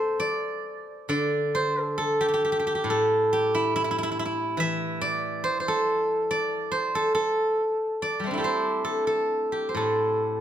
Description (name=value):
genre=chinese traditional, Chinese solo plucked strings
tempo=69 BPM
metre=4/4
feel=rubato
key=A yu mode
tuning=A4 = 439 Hz
part: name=steel-string zither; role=solo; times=0.0-10.4 s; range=A2 to E5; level=-23 LUFS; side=equal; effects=none
room=light reverb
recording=none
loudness=-23 LUFS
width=side -10 dB against mid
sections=0.0-10.4 A section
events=none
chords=none